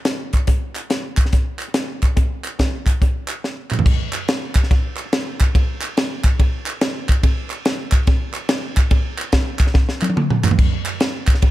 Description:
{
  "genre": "gospel",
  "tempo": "143 BPM",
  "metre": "4/4",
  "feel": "swing 65% on 8ths",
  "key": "none",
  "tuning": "none",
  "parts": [
    { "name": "crisp fusion drum kit", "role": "drums", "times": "0.1-11.5 s", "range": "crash cymbal, hi-hat, kick drum, ride cymbal, snare drum, toms", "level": "-16 LUFS", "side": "equal", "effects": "analog delay" },
    { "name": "group handclap", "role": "percussion", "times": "0.3-11.3 s", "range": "none", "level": "-29 LUFS", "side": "right 3 dB", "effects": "none" }
  ],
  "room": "little or no reverb",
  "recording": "echo-heavy mix",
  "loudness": "-17 LUFS",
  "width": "side -15 dB against mid",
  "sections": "0.0-3.9 A section; 3.9-11.5 B section",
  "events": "drum fill 3.4-3.9, 9.8-10.6",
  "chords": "none",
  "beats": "0.06 | 0.48 0.91 1.33 1.75 | 2.17 2.60 3.02 3.44 | 3.86 4.29 4.71 5.13 | 5.55 5.97 6.39 6.81 | 7.23 7.65 8.07 8.49 | 8.91 9.33 9.75 10.17 | 10.59 11.01 11.43"
}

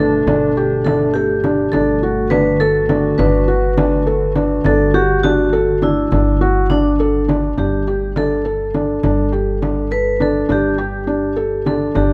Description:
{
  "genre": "contemporary instrumental, chamber music in an uneven meter",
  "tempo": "205 BPM (eighths)",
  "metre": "5/8",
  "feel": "straight",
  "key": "G major",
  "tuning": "A4 = 440 Hz",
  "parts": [
    { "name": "vibraphone with medium mallets", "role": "second line", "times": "0.0-12.1 s", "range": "D4 to B4", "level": "-21 LUFS", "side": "equal", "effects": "none" },
    { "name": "warbly tape-like pad", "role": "sustained chords", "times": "0.0-7.5 s", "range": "B2 to F#4", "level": "-26 LUFS", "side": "equal", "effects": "chorus, built-in reverb" },
    { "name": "felt-muted upright piano", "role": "arpeggios", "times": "0.0-12.1 s", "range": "D4 to A4", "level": "-20 LUFS", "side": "equal", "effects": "none" },
    { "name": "upright bass", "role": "bass", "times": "0.0-12.1 s", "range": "G1", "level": "-24 LUFS", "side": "equal", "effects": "none" },
    { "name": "frame drum", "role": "percussion", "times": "0.3-12.1 s", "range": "none", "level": "-27 LUFS", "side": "equal", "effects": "none" }
  ],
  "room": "light reverb",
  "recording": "close, detailed microphones",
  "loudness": "-16 LUFS",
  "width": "mono",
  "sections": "0.0-7.6 A section; 7.6-12.1 B section",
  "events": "none",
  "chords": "0.0 Gadd9; 1.7 D/G; 7.6 Gsus2",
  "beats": "| 0.27 0.56 0.85 1.15 1.44 | 1.73 2.02 2.32 2.61 2.90 | 3.19 3.49 3.78 4.07 4.36 | 4.66 4.95 5.24 5.53 5.83 | 6.12 6.41 6.70 7.00 7.29 | 7.58 7.87 8.16 8.46 8.75 | 9.04 9.33 9.62 9.92 10.21 | 10.50 10.79 11.09 11.38 11.67 | 11.96"
}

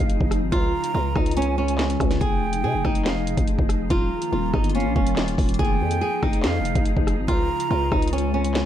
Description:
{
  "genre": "hip hop, drill",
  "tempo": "142 BPM",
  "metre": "4/4",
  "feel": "half-time",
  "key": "F minor",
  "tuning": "A4 = 440 Hz",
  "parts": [
    { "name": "flamenco guitar", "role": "melody", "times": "0.0-8.7 s", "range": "Db4 to Ab4", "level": "-27 LUFS", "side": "equal", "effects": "none" },
    { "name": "breathy mellow silver concert flute", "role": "second line", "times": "0.0-8.5 s", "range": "F5 to Bb5", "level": "-30 LUFS", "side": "right 4 dB", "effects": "ping-pong delay" },
    { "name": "glassy FM pad", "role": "sustained chords", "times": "0.0-8.7 s", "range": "Db3 to Ab4", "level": "-29 LUFS", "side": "left 2 dB", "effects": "ensemble chorus, built-in reverb" },
    { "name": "growling 808-style bass", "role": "bass", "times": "0.0-8.7 s", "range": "Eb1 to C3", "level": "-25 LUFS", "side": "equal", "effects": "none" },
    { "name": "drill drum kit", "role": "drums", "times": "0.1-8.6 s", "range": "handclaps, hi-hat, kick drum, rim click, snare drum", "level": "-23 LUFS", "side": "equal", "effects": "vintage 12-bit sampler grit" }
  ],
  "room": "light reverb",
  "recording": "none",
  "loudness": "-20 LUFS",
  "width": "side -11 dB against mid",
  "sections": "0.0-8.7 A section",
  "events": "none",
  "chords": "0.0 Fm7; 0.5 Db; 2.2 Fm7; 3.9 Ebsus2; 5.6 Fm7; 7.3 Db",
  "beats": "0.10 | 0.52 0.94 1.37 1.79 | 2.21 2.63 3.06 3.48 | 3.90 4.33 4.75 5.17 | 5.59 6.01 6.44 6.86 | 7.28 7.71 8.13 8.55"
}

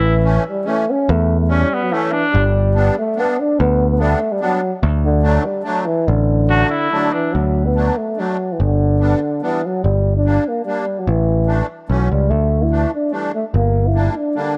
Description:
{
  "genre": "alpine folk, alpine dance band",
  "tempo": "145 BPM",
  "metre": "3/4",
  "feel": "straight",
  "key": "D major",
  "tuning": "A4 = 441 Hz",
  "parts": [
    { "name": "warm euphonium", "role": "melody", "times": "0.0-14.6 s", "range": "D3 to E4", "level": "-21 LUFS", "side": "equal", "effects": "slapback echo" },
    { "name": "mellow trumpet", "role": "second line", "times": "0.0-2.4, 6.5-7.3 s", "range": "A3 to F#4", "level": "-22 LUFS", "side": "equal", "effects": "slapback echo" },
    { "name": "picked electric bass", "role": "bass", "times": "0.0-14.1 s", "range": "G1 to E2", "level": "-18 LUFS", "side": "equal", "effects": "none" },
    { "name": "musette accordion", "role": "accompaniment", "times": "0.2-14.6 s", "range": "E3 to D4", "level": "-26 LUFS", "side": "equal", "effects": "none" }
  ],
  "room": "light reverb",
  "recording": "none",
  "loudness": "-17 LUFS",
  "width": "mono",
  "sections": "0.0-7.3 A section; 7.3-14.6 B section",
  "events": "none",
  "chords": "0.0 A; 2.3 G; 4.8 D; 8.6 G; 9.8 Gm; 11.1 Asus4; 11.9 A; 12.3 Dsus2; 13.5 Gm",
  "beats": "0.24 0.66 | 1.08 1.50 1.91 | 2.34 2.76 3.18 | 3.59 4.01 4.42 | 4.84 5.25 5.67 | 6.08 6.50 6.92 | 7.34 7.76 8.18 | 8.60 9.01 9.42 | 9.83 10.24 10.66 | 11.07 11.48 11.89 | 12.31 12.72 13.13 | 13.55 13.96 14.37"
}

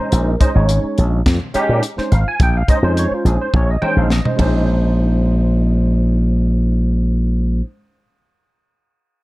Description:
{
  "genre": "electric jazz fusion",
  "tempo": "105 BPM",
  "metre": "4/4",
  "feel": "straight",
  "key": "Bb dorian",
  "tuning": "A4 = 440 Hz",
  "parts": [
    { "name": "barky tine electric piano", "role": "accompaniment", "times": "0.0-7.6 s", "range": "Ab3 to Ab5", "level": "-20 LUFS", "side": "right 1 dB", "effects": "overdrive, ensemble chorus" },
    { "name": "slap bass with an envelope filter", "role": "bass", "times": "0.1-7.6 s", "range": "Ab1 to Bb2", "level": "-15 LUFS", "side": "equal", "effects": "none" },
    { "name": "crisp fusion drum kit", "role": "drums", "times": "0.1-4.5 s", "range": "hi-hat, kick drum, ride cymbal, snare drum, toms", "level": "-18 LUFS", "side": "equal", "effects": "none" }
  ],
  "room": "light reverb, small room ambience",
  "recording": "dark, warm production",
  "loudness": "-14 LUFS",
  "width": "side -20 dB against mid",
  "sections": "0.0-4.7 A section; 4.7-7.0 B section",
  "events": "drum fill 3.5-4.7",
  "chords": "0.0 Bbm11",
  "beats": "| 0.12 0.69 1.26 1.83 | 2.40 2.97 3.54 4.11 | 4.67 5.24 5.81 6.38"
}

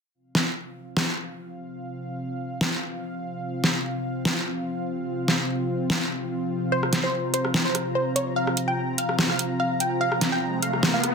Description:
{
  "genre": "heavy wobble dubstep",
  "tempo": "146 BPM",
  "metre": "4/4",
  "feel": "swing 53% on 16ths, half-time",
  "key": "unclear",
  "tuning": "A4 = 440 Hz",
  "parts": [
    { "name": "lush unison pad", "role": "sustained chords", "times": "0.7-11.1 s", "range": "C3 to Bb5", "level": "-28 LUFS", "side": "equal", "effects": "chorus" },
    { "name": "dubstep drum kit", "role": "drums", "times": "0.3-11.1 s", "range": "hi-hat, rim click, snare drum", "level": "-24 LUFS", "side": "equal", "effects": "none" },
    { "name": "wide unison pluck", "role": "melody", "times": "6.7-11.1 s", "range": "C5 to G5", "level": "-26 LUFS", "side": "equal", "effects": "ping-pong delay" },
    { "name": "riser", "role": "sound effects", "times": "10.3-11.1 s", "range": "none", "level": "-29 LUFS", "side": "equal", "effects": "none" }
  ],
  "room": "moderate digital room reverb, RT60 1.0 s, digital ambience",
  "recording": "dense, heavily limited modern master",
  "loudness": "-23 LUFS",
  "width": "side -5 dB against mid",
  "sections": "0.1-11.1 A section",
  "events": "riser 10.3-11.1",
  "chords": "0.1 F5",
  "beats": "| 0.15 0.56 0.97 1.38 | 1.79 2.20 2.61 3.02 | 3.43 3.84 4.25 4.67 | 5.08 5.49 5.90 6.31 | 6.72 7.13 7.54 7.95 | 8.37 8.78 9.19 9.60 | 10.01 10.42 10.83"
}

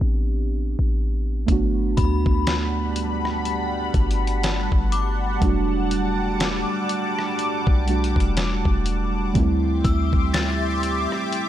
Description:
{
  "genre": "contemporary R&B",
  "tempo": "61 BPM",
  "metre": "4/4",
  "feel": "swing 58% on 16ths",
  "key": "G major",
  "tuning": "A4 = 441 Hz",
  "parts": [
    { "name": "muted felt-like synth keys", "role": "accompaniment", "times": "0.0-11.5 s", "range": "G3 to G4", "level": "-26 LUFS", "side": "right 4 dB", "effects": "chorus" },
    { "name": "warm 808-style bass", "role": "bass", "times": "0.0-11.1 s", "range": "E1 to D2", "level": "-23 LUFS", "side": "equal", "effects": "none" },
    { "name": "lush unison pad", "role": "sustained chords", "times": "2.2-11.5 s", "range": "G3 to D6", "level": "-27 LUFS", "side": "left 2 dB", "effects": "chorus, phaser, sidechain pumping" },
    { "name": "dusty soul sampler-style drum kit", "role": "drums", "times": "1.5-11.5 s", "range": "hi-hat, kick drum, rim click, snare drum", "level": "-23 LUFS", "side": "equal", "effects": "none" },
    { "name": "synth chime", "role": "texture", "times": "2.0-11.5 s", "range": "B5 to A6", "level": "-32 LUFS", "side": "left 6 dB", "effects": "ensemble chorus, tremolo, ping-pong delay" }
  ],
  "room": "digital ambience",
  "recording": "none",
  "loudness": "-20 LUFS",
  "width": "side -12 dB against mid",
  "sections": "0.0-11.5 A section",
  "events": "none",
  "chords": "0.0 Am11; 1.5 Gmaj9; 5.4 Em11; 9.4 D9sus4",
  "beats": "0.50 | 1.48 2.47 3.45 4.43 | 5.42 6.40 7.38 8.37 | 9.35 10.34 11.32"
}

